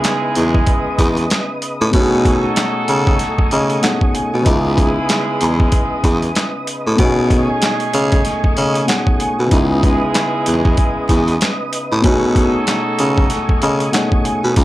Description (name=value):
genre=hip hop, boom-bap hip-hop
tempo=95 BPM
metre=4/4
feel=swing 59% on 16ths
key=unclear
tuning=A4 = 440 Hz
part: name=dark upright piano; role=accompaniment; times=0.0-14.6 s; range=B2 to G#5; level=-21 LUFS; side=left 2 dB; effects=cassette tape, high-pass filter, low-pass filter
part: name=tonewheel organ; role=sustained chords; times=0.0-14.6 s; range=A3 to D#6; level=-24 LUFS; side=equal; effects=chorus vibrato, slow rotary speaker, high-pass filter, low-pass filter
part: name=warm horn section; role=stabs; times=0.0-14.6 s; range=G#3 to A4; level=-23 LUFS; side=right 2 dB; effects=high-pass filter, low-pass filter, analog delay
part: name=boom bap sampler-style drum kit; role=drums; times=0.0-14.6 s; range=handclaps, hi-hat, kick drum, snare drum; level=-16 LUFS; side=equal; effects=overdrive
part: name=growling baritone saxophone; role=bass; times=0.4-14.6 s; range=C#2 to C#3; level=-16 LUFS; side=equal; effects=none
room=little or no reverb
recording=dry, gritty hardware recording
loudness=-13 LUFS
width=side -16 dB against mid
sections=0.0-14.6 A section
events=none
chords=0.0 C#m9; 1.9 B13; 4.5 C#m9; 7.0 B13; 9.5 C#m9; 12.0 B13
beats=0.04 0.67 1.30 | 1.94 2.57 3.20 3.83 | 4.46 5.09 5.73 6.36 | 6.99 7.62 8.25 8.88 | 9.52 10.15 10.78 11.41 | 12.04 12.67 13.30 13.94 | 14.57